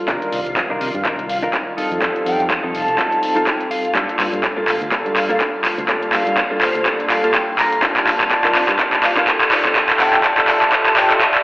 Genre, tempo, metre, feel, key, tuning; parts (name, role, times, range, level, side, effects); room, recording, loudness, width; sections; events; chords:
filtered disco house; 124 BPM; 4/4; swing 56% on 16ths; G minor; A4 = 441 Hz
bell-like tine electric piano; accompaniment; 0.0-11.4 s; Eb3 to A5; -22 LUFS; equal; medium stereo tremolo, phaser, sidechain pumping, low-pass filter
string machine, full ensemble; sustained chords; 0.0-11.4 s; F4 to F5; -28 LUFS; equal; ensemble chorus, sidechain pumping, low-pass filter
direct-recorded clean electric guitar; riff; 0.1-11.4 s; Bb3 to Bb5; -23 LUFS; equal; sidechain pumping, low-pass filter
fingered electric bass; bass; 0.1-11.4 s; F1 to C3; -31 LUFS; equal; sidechain pumping, low-pass filter
electronic kick drum; drums; 0.1-11.3 s; -26 LUFS; equal; high-pass filter on kick
punchy analog drum machine; drums; 0.1-11.4 s; handclaps, hi-hat; -17 LUFS; equal; overdrive, sidechain pumping on hats
breathy mellow silver concert flute; melody; 1.3-11.2 s; F5 to A5; -22 LUFS; equal; vintage 12-bit sampler grit, sidechain pumping, low-pass filter, tape echo
wet plate reverb, RT60 1.2 s; played on a big sound system in a bare room, large studio reverb, high-pass filter, telephone sound; -14 LUFS; side -20 dB against mid
0.0-11.4 A section
build-up 0.0-11.4; drum fill 0.0-11.4; clean electric guitar fill 3.2-4.0, 6.4-7.8, 10.7-11.4
0.1 Cm11; 1.8 F7; 4.0 Gm9; 7.8 Cm11; 9.5 F7